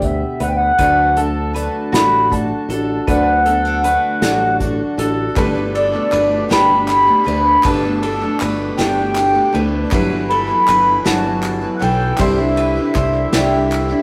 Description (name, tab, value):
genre	indie folk with a building arrangement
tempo	53 BPM (dotted quarters)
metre	6/8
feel	straight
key	G major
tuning	A4 = 440 Hz
part	mellow accordion	melody	0.0-14.0 s	D5 to B5	-18 LUFS	equal	none
part	fingerpicked acoustic archtop guitar	accompaniment	0.0-7.6 s	A2 to G4	-32 LUFS	equal	none
part	mandolin	arpeggios	0.0-14.0 s	F#4 to C5	-28 LUFS	equal	none
part	fingered electric bass	bass	0.0-13.9 s	G1 to D2	-25 LUFS	equal	none
part	unplugged drum kit	drums	0.0-13.9 s	hi-hat, kick drum, ride cymbal, snare drum	-26 LUFS	equal	none
part	clear upright piano	accompaniment	0.8-14.0 s	G1 to D5	-30 LUFS	equal	none
part	picked twelve-string acoustic guitar	accompaniment	0.8-14.0 s	G2 to B4	-24 LUFS	equal	none
part	hand-pumped harmonium	sustained chords	5.4-14.0 s	B2 to G4	-32 LUFS	equal	none
part	group handclap	percussion	5.4-14.0 s	none	-32 LUFS	equal	none
room	moderate stone room reverb, RT60 0.9 s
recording	rough rehearsal-room recording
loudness	-16 LUFS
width	mono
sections	0.0-5.4 A section; 5.4-14.0 B section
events	none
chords	0.0 Gadd9; 0.8 D; 5.4 Gadd9; 9.9 Emadd9/G; 12.2 Cadd9